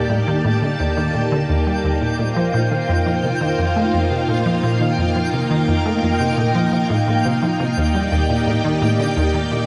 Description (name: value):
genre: ambient, sequencer-driven space music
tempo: 86 BPM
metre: 4/4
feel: straight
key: unclear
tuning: A4 = 440 Hz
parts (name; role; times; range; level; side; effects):
- string machine, full ensemble; sustained chords; 0.0-9.7 s; Bb3 to A5; -23 LUFS; equal; ensemble chorus
- twinkling granular texture; texture; 0.0-9.7 s; G5; -29 LUFS; equal; built-in reverb
- resonant blip pluck; riff; 0.1-9.6 s; Eb2 to A3; -21 LUFS; equal; chorus, delay
room: wet plate reverb, RT60 2.4 s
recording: cassette tape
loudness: -19 LUFS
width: mono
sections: 0.0-9.7 A section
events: none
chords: 0.0 Ebmaj7; 2.2 F7sus4; 7.8 Ebmaj7